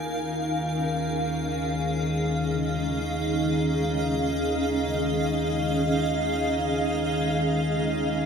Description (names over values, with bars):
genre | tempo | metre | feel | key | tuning
ambient | free time | none | none | unclear | A4 = 441 Hz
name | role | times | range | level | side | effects
granular cloud pad | sustained chords | 0.0-8.3 s | Db4 to Ab5 | -25 LUFS | equal | built-in reverb, shimmer reverb
warm sub bass | bass | 0.0-8.3 s | Eb2 | -37 LUFS | equal | none
organ-like drone | drone | 0.0-8.3 s | Eb3 to Eb4 | -28 LUFS | left 1 dB | ensemble chorus, built-in reverb
room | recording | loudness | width
wet lush hall reverb, RT60 3.4 s | none | -23 LUFS | side -6 dB against mid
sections
0.0-8.3 A section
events
fade-out on sub bass 0.0-8.3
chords
0.0 Db/Eb